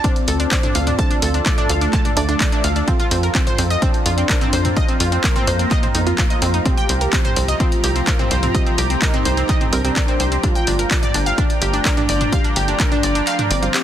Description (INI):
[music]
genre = melodic techno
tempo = 127 BPM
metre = 4/4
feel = straight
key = unclear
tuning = A4 = 440 Hz
[part]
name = mellow synth brass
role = melody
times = 0.0-13.8 s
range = A3 to G4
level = -26 LUFS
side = equal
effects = chorus, sidechain pumping, digital delay
[part]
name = deep dark ambient pad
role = sustained chords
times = 0.0-13.8 s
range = F4 to Bb5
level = -26 LUFS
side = right 1 dB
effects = chorus, built-in reverb, sidechain pumping
[part]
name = analog pluck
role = arpeggios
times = 0.0-13.8 s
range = C4 to A5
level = -23 LUFS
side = equal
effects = chorus, sidechain pumping, digital delay
[part]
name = bowed-like drone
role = drone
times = 1.4-13.8 s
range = F3 to A3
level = -32 LUFS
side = equal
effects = built-in reverb, phaser, sidechain pumping
[part]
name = electronic kick drum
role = drums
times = 0.0-12.9 s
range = none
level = -20 LUFS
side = equal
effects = none
[part]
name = punchy analog drum machine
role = drums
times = 0.0-13.8 s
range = handclaps, hi-hat, toms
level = -23 LUFS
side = equal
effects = sidechain pumping on hats, sidechain pumping on toms, sidechain pumping on cymbals
[part]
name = tight sequencer bass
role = bass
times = 0.3-13.7 s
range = G1 to F2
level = -20 LUFS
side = equal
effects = sidechain pumping
[part]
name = filtered dub chord stab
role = stabs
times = 1.0-3.0, 6.1-13.7 s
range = G2 to F4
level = -28 LUFS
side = right 4 dB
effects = none
[sound]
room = digital ambience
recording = dense, heavily limited modern master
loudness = -15 LUFS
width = side -10 dB against mid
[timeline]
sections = 0.0-13.8 A section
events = kick drops out 13.3-13.8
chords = 0.0 Dm; 2.9 F7sus4; 6.7 Cm7; 10.4 Gm7